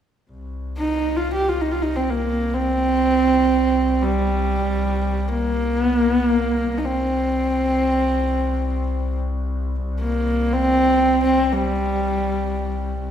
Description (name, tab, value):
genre	mongolian traditional, Mongolian folk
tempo	free time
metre	none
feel	none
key	C yu mode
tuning	A4 = 441 Hz
part	bright double bass	drone	0.3-13.1 s	C2	-25 LUFS	left 1 dB	none
part	rich horsehead fiddle	melody	0.8-13.1 s	G3 to G4	-19 LUFS	right 1 dB	none
room	wet recital hall reverb, RT60 1.8 s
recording	recorded in a church or concert hall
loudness	-18 LUFS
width	side -9 dB against mid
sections	0.3-13.1 A section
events	none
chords	none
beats	free time